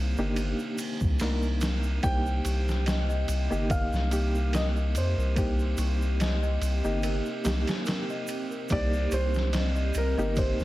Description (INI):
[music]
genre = trip hop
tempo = 72 BPM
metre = 4/4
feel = swing 55% on 16ths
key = C minor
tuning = A4 = 441 Hz
[part]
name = felt-muted upright piano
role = melody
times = 0.0-10.6 s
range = Bb4 to G5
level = -35 LUFS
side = right 1 dB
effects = tape echo
[part]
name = reed electric piano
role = accompaniment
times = 0.0-10.6 s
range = Bb3 to Bb4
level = -33 LUFS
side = equal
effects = fast tremolo
[part]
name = warbly tape-like pad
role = sustained chords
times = 0.0-10.6 s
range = C3 to G4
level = -38 LUFS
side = equal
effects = chorus, built-in reverb, phaser
[part]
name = round analog bass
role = bass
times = 0.0-10.6 s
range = G1 to F2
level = -27 LUFS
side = equal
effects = none
[part]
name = tube shaker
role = percussion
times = 0.2-10.6 s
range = none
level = -47 LUFS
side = right 5 dB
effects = none
[part]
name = trip hop sampler-style drum kit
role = drums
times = 0.4-10.6 s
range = kick drum, ride cymbal, snare drum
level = -32 LUFS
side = equal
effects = none
[part]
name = worn celesta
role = arpeggios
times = 2.0-10.6 s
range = G4 to Eb5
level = -38 LUFS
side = left 3 dB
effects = vintage 12-bit sampler grit, digital delay
[sound]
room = digital ambience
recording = vinyl crackle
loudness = -25 LUFS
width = side -16 dB against mid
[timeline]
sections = 0.0-10.6 A section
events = none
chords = 0.0 Cm7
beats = 0.36 1.20 | 2.03 2.86 3.70 4.53 | 5.36 6.20 7.03 7.86 | 8.70 9.53 10.36